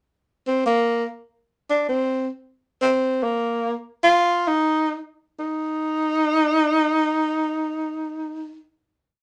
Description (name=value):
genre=jazz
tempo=free time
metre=none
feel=none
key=unclear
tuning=A4 = 440 Hz
part: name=warm tenor saxophone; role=solo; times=0.5-8.6 s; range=Bb3 to F4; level=-22 LUFS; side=equal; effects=none
room=wet studio ambience, RT60 0.5 s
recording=none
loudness=-22 LUFS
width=mono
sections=0.5-5.4 A section; 5.4-7.8 final note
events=none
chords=none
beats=free time